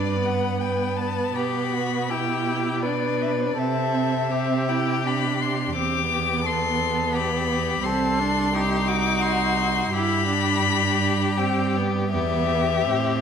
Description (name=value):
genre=classical, slow romantic movement for string quartet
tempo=78-87 BPM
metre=3/4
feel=rubato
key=G major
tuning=A4 = 441 Hz
part: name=rich violin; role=melody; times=0.0-13.2 s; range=C5 to D6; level=-26 LUFS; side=left 10 dB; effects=none
part: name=rich violin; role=second line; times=0.0-13.2 s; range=F#4 to B4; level=-27 LUFS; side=left 3 dB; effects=none
part: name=clear viola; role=accompaniment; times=0.0-13.2 s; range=B3 to E4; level=-27 LUFS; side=right 2 dB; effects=none
part: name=rich cello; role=bass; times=0.0-13.2 s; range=C2 to C3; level=-26 LUFS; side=right 5 dB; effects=none
room=wet scoring stage reverb, RT60 2.1 s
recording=none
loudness=-21 LUFS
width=side -7 dB against mid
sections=0.0-13.2 A section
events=none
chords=0.0 G; 1.4 G/B; 3.6 C; 5.8 C/E; 7.9 Cm; 9.9 G; 12.1 Em